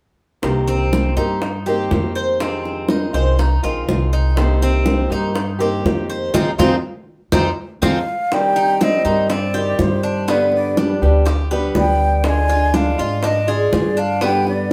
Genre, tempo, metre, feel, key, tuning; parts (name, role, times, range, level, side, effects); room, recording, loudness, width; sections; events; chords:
latin, Cuban son and guajira; 122 BPM; 4/4; straight; C minor, C harmonic minor from 8.3 s; A4 = 440 Hz
fingerpicked swing-style acoustic guitar; accompaniment; 0.4-14.7 s; C3 to G4; -24 LUFS; equal
upright bass; bass; 0.4-14.7 s; Bb1 to Ab2; -22 LUFS; equal
bongos; percussion; 0.4-14.7 s; -24 LUFS; equal
Cuban tres; arpeggios; 0.7-14.7 s; B3 to C5; -26 LUFS; equal
breathy mellow silver concert flute; melody; 7.8-14.7 s; B4 to Ab5; -22 LUFS; equal
wet studio reverb, RT60 0.6 s; band playing live in one room; -18 LUFS; mono
0.4-8.3 A section; 8.3-14.7 B section
band accent 6.3-8.3; drum fill 7.3-8.3
0.4 Cm7; 2.4 Fm7; 4.4 Cm7; 6.3 Fm7; 8.3 Cm; 10.3 G; 12.3 Ddim; 14.2 G